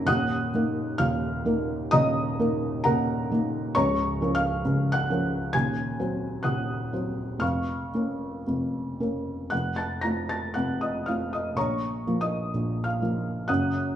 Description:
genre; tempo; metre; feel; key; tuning
classical, romantic nocturne for solo piano; 56-68 BPM; 4/4; rubato; Bb minor; A4 = 439 Hz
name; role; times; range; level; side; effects
felt-muted upright piano; solo; 0.0-14.0 s; Db1 to Bb6; -24 LUFS; equal; none
room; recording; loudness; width
wet large studio reverb, RT60 0.9 s; heard from further back in the room, nothing above 10.9 kHz; -24 LUFS; side -10 dB against mid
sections
0.0-14.0 A section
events
none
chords
0.1 Ebm; 3.7 Bbm/Db; 5.5 Cdim/Eb; 7.4 Bbm/F; 9.5 F; 11.6 Bbm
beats
| 0.07 0.98 1.91 2.83 | 3.75 4.64 5.53 6.45 | 7.42 8.47 9.52 10.54 | 11.56 12.53 13.49

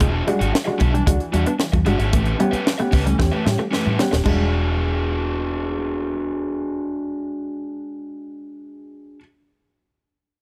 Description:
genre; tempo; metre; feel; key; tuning
funk; 113 BPM; 4/4; straight; E mixolydian; A4 = 437 Hz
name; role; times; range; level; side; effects
raw garage guitar; accompaniment; 0.0-9.2 s; C#4 to F#5; -28 LUFS; equal; overdrive
semi-hollow electric guitar; riff; 0.0-4.4 s; G3 to B3; -30 LUFS; equal; phaser
warm upright piano; stabs; 0.0-9.2 s; A2 to G4; -29 LUFS; equal; none
vintage muted fingered electric bass; bass; 0.0-9.2 s; D#1 to A2; -24 LUFS; equal; none
tight funk drum kit; drums; 0.0-4.4 s; crash cymbal, hi-hat, kick drum, snare drum; -24 LUFS; equal; none
congas; percussion; 0.0-4.5 s; none; -31 LUFS; equal; none
room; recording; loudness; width
little or no reverb; none; -21 LUFS; mono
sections
0.0-4.3 A section; 4.3-8.5 B section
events
drum fill 3.2-4.3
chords
0.0 E9; 2.1 A9; 4.3 E9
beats
| 0.01 0.54 1.07 1.60 | 2.14 2.67 3.20 3.73 | 4.26 4.79 5.33 5.86 | 6.39 6.92 7.45 7.98

